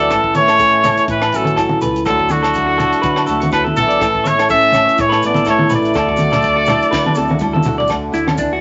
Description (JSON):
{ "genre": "highlife guitar band", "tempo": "123 BPM", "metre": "4/4", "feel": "swing 55% on 16ths", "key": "D major", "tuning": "A4 = 440 Hz", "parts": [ { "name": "clear trumpet", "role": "melody", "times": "0.0-7.6 s", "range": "F#4 to E5", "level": "-17 LUFS", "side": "equal", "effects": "none" }, { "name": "clear trombone", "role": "second line", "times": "0.0-7.6 s", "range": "D3 to C#4", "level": "-26 LUFS", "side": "equal", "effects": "none" }, { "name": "flamenco guitar", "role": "accompaniment", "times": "0.0-8.6 s", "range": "A2 to A4", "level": "-24 LUFS", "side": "equal", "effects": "none" }, { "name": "clean electric guitar", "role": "arpeggios", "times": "0.0-8.6 s", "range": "C#4 to D5", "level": "-24 LUFS", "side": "equal", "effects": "none" }, { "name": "fingered electric bass", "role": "bass", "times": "0.0-8.6 s", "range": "A1 to D3", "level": "-29 LUFS", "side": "equal", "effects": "none" }, { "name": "maracas", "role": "percussion", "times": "0.0-8.5 s", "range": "none", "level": "-42 LUFS", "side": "equal", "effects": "none" }, { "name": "compact cocktail drum kit", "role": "drums", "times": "0.1-8.5 s", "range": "hi-hat, kick drum, rim click, snare drum, toms", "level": "-28 LUFS", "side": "equal", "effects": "none" }, { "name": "agogo bells", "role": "percussion", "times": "0.1-8.4 s", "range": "none", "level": "-27 LUFS", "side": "equal", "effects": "none" }, { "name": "congas", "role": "percussion", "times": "0.3-8.4 s", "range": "none", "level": "-23 LUFS", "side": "equal", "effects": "none" } ], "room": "wet studio reverb, RT60 0.7 s", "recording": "nothing above 7.6 kHz", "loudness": "-15 LUFS", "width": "mono", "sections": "0.0-7.9 A section", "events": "drum fill 6.9-7.9", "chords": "0.1 A; 2.1 Dadd9; 4.0 A; 6.0 Dadd9; 7.9 D" }